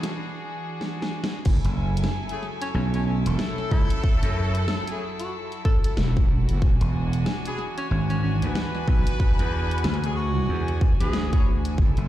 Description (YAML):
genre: glitch hop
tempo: 93 BPM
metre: 4/4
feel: swing 60% on 16ths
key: F# minor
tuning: A4 = 440 Hz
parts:
  - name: rich chamber string section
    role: sustained chords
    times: 0.0-12.1 s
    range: E3 to G#5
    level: -33 LUFS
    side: equal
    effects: sidechain pumping
  - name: wobble bass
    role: bass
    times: 0.0-1.6, 6.0-6.8, 11.8-11.9 s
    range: E1 to F#1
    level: -24 LUFS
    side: equal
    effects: chorus, overdrive, high-pass filter
  - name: dubstep drum kit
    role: drums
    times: 0.0-12.1 s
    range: crash cymbal, hi-hat, snare drum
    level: -31 LUFS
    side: left 1 dB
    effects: none
  - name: electronic kick drum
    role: drums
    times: 1.5-11.9 s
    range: none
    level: -20 LUFS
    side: equal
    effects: high-pass filter on kick, high-pass filter on room
  - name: gritty slap bass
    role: bass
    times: 1.6-12.1 s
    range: E1 to F#2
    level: -24 LUFS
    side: equal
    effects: overdrive
  - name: clear horn section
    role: stabs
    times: 2.3-11.5 s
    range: A3 to C#5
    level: -33 LUFS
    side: left 2 dB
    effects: sidechain pumping, ping-pong delay
  - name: breathy tenor saxophone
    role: melody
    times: 2.6-11.5 s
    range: C#4 to A4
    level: -34 LUFS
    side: equal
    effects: ping-pong delay
room: little or no reverb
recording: played on a big sound system in a bare room, large studio reverb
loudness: -22 LUFS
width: side -13 dB against mid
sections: 0.0-1.5 A section; 1.5-12.1 B section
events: build-up 0.0-1.5; drum fill 0.0, 0.8-1.5; break 0.2-1.5; drop 1.5-12.1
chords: 0.0 E9; 1.5 F#m9; 6.6 E9